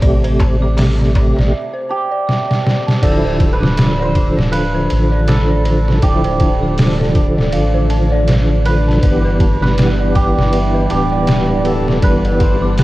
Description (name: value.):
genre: trip hop.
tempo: 80 BPM.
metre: 4/4.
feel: swing 58% on 16ths.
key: D dorian.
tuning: A4 = 437 Hz.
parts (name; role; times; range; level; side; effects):
tonewheel organ; accompaniment; 0.0-12.8 s; C3 to G4; -18 LUFS; equal; overdrive, chorus vibrato, slow rotary speaker, tremolo.
string machine, cellos; sustained chords; 0.0-12.8 s; G3 to E6; -24 LUFS; equal; ensemble chorus, vintage 12-bit sampler grit.
dark detuned synth bell; arpeggios; 0.0-12.8 s; B4 to D6; -23 LUFS; right 1 dB; chorus, phaser, tape echo.
soft dub sub bass; bass; 0.0-12.8 s; D1 to A1; -17 LUFS; equal; none.
trip hop sampler-style drum kit; drums; 0.0-12.8 s; crash cymbal, hi-hat, kick drum, ride cymbal, snare drum; -16 LUFS; equal; none.
darbuka; percussion; 0.0-1.5 s; none; -31 LUFS; left 1 dB; none.
hammered dulcimer; melody; 1.9-12.8 s; G4 to C5; -22 LUFS; right 3 dB; none.
room: little or no reverb.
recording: worn, warbling old tape, cassette tape, vinyl crackle, warbly pitch drift.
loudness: -12 LUFS.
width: side -17 dB against mid.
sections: 0.0-3.0 A section; 3.0-12.8 B section.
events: break 1.5-3.0; drum fill 2.3-3.0.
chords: 0.0 Am7; 3.0 Dmadd9; 9.0 G6.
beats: | 0.03 0.78 1.53 2.28 | 3.03 3.78 4.53 5.28 | 6.03 6.78 7.53 8.28 | 9.03 9.78 10.53 11.28 | 12.03 12.78.